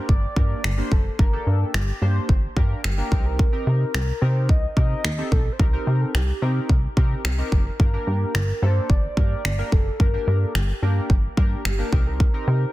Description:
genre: dance-pop.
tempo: 109 BPM.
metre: 4/4.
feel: straight.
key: G minor.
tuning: A4 = 440 Hz.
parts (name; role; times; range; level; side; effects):
mellow horn-like synth lead; melody; 0.0-12.7 s; G4 to Eb5; -32 LUFS; equal; chorus, phaser, digital delay.
chorused polysynth; accompaniment; 0.0-12.7 s; Bb3 to C5; -31 LUFS; left 1 dB; sidechain pumping.
plucky analog bass; bass; 0.1-12.7 s; F#1 to C3; -22 LUFS; equal; sidechain pumping.
pop drum kit; drums; 0.1-12.3 s; finger snaps, kick drum; -21 LUFS; equal; soft clipping on snare.
room: digital ambience.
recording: dense, heavily limited modern master.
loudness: -19 LUFS.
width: side -17 dB against mid.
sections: 0.0-12.7 A section.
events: none.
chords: 0.0 Gm; 3.1 Cm7; 7.8 Gm; 11.9 Cm7.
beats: 0.09 0.64 | 1.19 1.74 2.29 2.84 | 3.39 3.94 4.49 5.04 | 5.59 6.14 6.70 7.25 | 7.80 8.35 8.90 9.45 | 10.00 10.55 11.10 11.65 | 12.20.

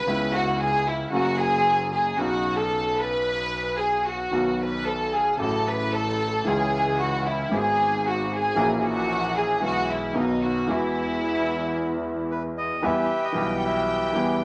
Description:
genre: tango.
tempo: 113 BPM.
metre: 4/4.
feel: rubato.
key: E major.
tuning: A4 = 438 Hz.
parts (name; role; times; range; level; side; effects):
warm studio violin section; second line; 0.0-14.4 s; D#4 to G5; -27 LUFS; equal; none.
warm upright piano; accompaniment; 0.0-14.4 s; G#1 to G#4; -29 LUFS; equal; none.
clear double bass; bass; 0.1-14.4 s; F#1 to E2; -35 LUFS; equal; none.
bandoneon; melody; 12.3-14.4 s; G4 to G5; -28 LUFS; equal; none.
room: wet studio reverb, RT60 0.6 s.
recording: none.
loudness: -24 LUFS.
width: mono.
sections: 0.0-12.8 A section; 12.8-14.4 B section.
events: violin section solo 0.0-12.8.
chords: 0.1 C#m7; 1.1 F#; 2.2 Badd9; 4.3 B; 5.4 F#m/A; 6.5 C#m; 7.5 G#m; 8.6 F#7/A#; 9.6 E/B; 10.2 B; 10.7 Eadd9; 12.8 Em.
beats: | 0.06 0.59 1.12 1.65 | 2.18 2.72 3.25 3.79 | 4.32 4.86 5.39 5.92 | 6.46 6.99 7.52 8.05 | 8.58 9.11 9.64 10.17 | 10.70 11.23 11.76 12.30 | 12.83 13.37 13.90 14.43.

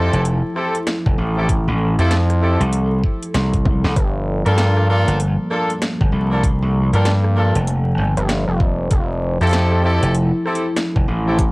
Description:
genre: glitch hop.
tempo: 97 BPM.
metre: 4/4.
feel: swing 62% on 16ths.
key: unclear.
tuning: A4 = 440 Hz.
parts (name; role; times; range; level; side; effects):
dark analog pad; sustained chords; 0.0-11.5 s; F3 to A4; -25 LUFS; equal; chorus, sidechain pumping, cassette tape.
clear horn section; stabs; 0.0-11.4 s; Bb3 to A4; -22 LUFS; equal; sidechain pumping, cassette tape, analog delay.
gritty driven synth bass; bass; 0.0-10.0 s; F1 to G2; -16 LUFS; equal; tube saturation.
gritty slap bass; bass; 0.1-11.5 s; F1 to C2; -17 LUFS; equal; overdrive.
drum and bass drum kit; drums; 0.1-11.5 s; hi-hat, rim click, snare drum, toms; -25 LUFS; equal; cassette tape.
electronic kick drum; drums; 1.1-11.5 s; none; -17 LUFS; equal; cassette tape.
room: light reverb.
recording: home recording on cassette, vinyl crackle.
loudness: -15 LUFS.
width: side -25 dB against mid.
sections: 0.0-11.5 A section.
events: drum fill 3.7-4.0.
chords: 0.0 Fmaj9; 4.0 Gm9; 8.9 Fmaj9.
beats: 0.25 0.87 | 1.49 2.11 2.73 3.34 | 3.96 4.58 5.20 5.82 | 6.44 7.05 7.67 8.29 | 8.91 9.53 10.15 10.77 | 11.38.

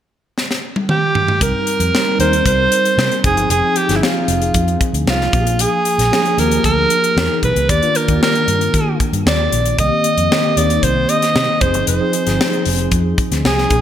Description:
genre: polished 1980s jazz-funk pop.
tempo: 115 BPM.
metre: 4/4.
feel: straight.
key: C minor.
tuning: A4 = 440 Hz.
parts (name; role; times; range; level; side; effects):
crisp fusion drum kit; drums; 0.4-13.8 s; hi-hat, kick drum, snare drum, toms; -19 LUFS; left 1 dB; gated reverb.
breathy alto saxophone; melody; 0.9-13.8 s; E4 to Eb5; -17 LUFS; right 1 dB; none.
mellow tine electric piano; accompaniment; 1.4-13.8 s; Eb3 to Bb4; -20 LUFS; left 1 dB; fast stereo tremolo, ensemble chorus.
vintage muted fingered electric bass; bass; 1.4-13.8 s; F1 to Eb3; -19 LUFS; equal; none.
room: moderate plate reverb, RT60 2.1 s.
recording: bright 1980s-style digital production.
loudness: -13 LUFS.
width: side -10 dB against mid.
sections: 0.0-1.4 A section; 1.4-13.8 B section.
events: drum fill 0.4-1.4.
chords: 0.0 N.C.; 1.4 Cm7; 3.2 Fm7; 5.3 Bb7; 7.2 Emaj7; 7.7 Ebmaj7; 9.8 Cm7; 11.6 Fm7.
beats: 0.36 0.89 | 1.41 1.93 2.46 2.98 | 3.50 4.03 4.55 5.07 | 5.60 6.12 6.64 7.17 | 7.69 8.21 8.74 9.26 | 9.78 10.31 10.83 11.35 | 11.88 12.40 12.92 13.45.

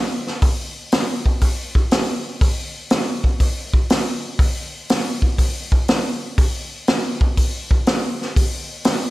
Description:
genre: rock.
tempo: 121 BPM.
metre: 4/4.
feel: swing 67% on 8ths.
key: none.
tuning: none.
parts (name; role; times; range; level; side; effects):
vintage drum kit; drums; 0.3-9.0 s; hi-hat, kick drum, snare drum; -17 LUFS; equal; none.
room: moderate recital hall reverb, RT60 1.5 s.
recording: none.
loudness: -17 LUFS.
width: side -18 dB against mid.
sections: 0.0-9.1 A section.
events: none.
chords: none.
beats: | 0.44 0.93 1.43 1.93 | 2.42 2.92 3.42 3.91 | 4.41 4.90 5.40 5.89 | 6.39 6.88 7.38 7.87 | 8.37 8.86.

